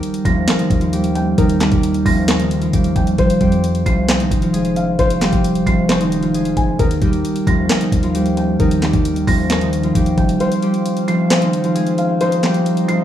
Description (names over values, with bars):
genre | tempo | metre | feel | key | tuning
hip hop, trap | 133 BPM | 4/4 | half-time | F minor | A4 = 437 Hz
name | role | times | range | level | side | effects
concert harp | melody | 0.0-13.0 s | Eb3 to Ab4 | -16 LUFS | equal | none
felt-muted upright piano | accompaniment | 0.0-13.0 s | Bb4 to C7 | -23 LUFS | left 1 dB | none
trap drum kit | drums | 0.0-13.0 s | handclaps, hi-hat, kick drum, snare drum | -19 LUFS | equal | none
long sustained 808-style bass | bass | 0.3-10.4 s | F1 to F2 | -22 LUFS | equal | none
pedal harmonium | sustained chords | 10.4-13.0 s | F3 to F4 | -26 LUFS | right 2 dB | none
room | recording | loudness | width
moderate digital room reverb, RT60 1.1 s, small room ambience | rough home demo mix, studio ambience | -14 LUFS | side -11 dB against mid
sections
0.0-13.0 A section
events
kick muted 10.4-13.0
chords
0.0 Eb; 3.2 Fm; 6.8 Eb; 10.4 Fm